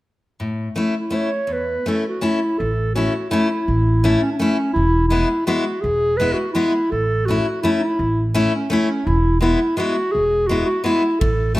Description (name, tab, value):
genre	alpine folk, alpine dance band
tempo	166 BPM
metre	3/4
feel	straight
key	A major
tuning	A4 = 440 Hz
part	fingerpicked steel-string acoustic guitar	accompaniment	0.4-11.6 s	E2 to E4	-21 LUFS	left 2 dB	none
part	dark clarinet	melody	1.0-11.6 s	C#4 to C#5	-20 LUFS	equal	slapback echo
part	upright bass	bass	2.6-11.6 s	E1 to A1	-20 LUFS	right 1 dB	none
part	natural country drum kit	drums	11.2-11.3 s	kick drum, ride cymbal	-22 LUFS	right 1 dB	none
room	moderate recital hall reverb, RT60 1.4 s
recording	none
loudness	-17 LUFS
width	side -17 dB against mid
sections	0.4-2.6 A section; 2.6-11.6 B section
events	none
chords	0.4 A; 4.7 E; 6.9 A; 9.1 Eadd9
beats	| 0.41 0.77 1.13 | 1.49 1.85 2.22 | 2.58 2.95 3.31 | 3.67 4.03 4.38 | 4.74 5.10 5.46 | 5.83 6.19 6.55 | 6.92 7.28 7.64 | 8.00 8.35 8.71 | 9.07 9.42 9.78 | 10.14 10.49 10.86 | 11.22 11.58